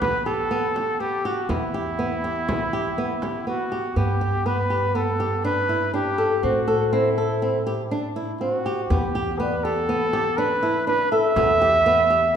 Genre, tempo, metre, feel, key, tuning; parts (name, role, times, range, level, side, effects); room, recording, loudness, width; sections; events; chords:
contemporary instrumental, chamber music in an uneven meter; 122 BPM; 5/4; straight; E minor; A4 = 440 Hz
warm flugelhorn; melody; 0.0-12.4 s; E4 to E5; -22 LUFS; right 1 dB
flamenco guitar; arpeggios; 0.0-12.3 s; B3 to A4; -25 LUFS; left 1 dB
upright bass; bass; 0.0-12.4 s; E2 to A2; -29 LUFS; right 1 dB
frame drum; percussion; 0.0-3.8, 8.9-12.2 s; -33 LUFS; left 1 dB
folk marimba with soft mallets; texture; 9.3-10.4 s; G4 to D5; -33 LUFS; left 2 dB
wet concert hall reverb, RT60 1.9 s; minimal, uncompressed stereo recording; -20 LUFS; side -8 dB against mid
0.0-4.0 A section; 4.0-12.4 B section
0.0 Em; 4.0 G; 6.4 Am7; 8.9 Em7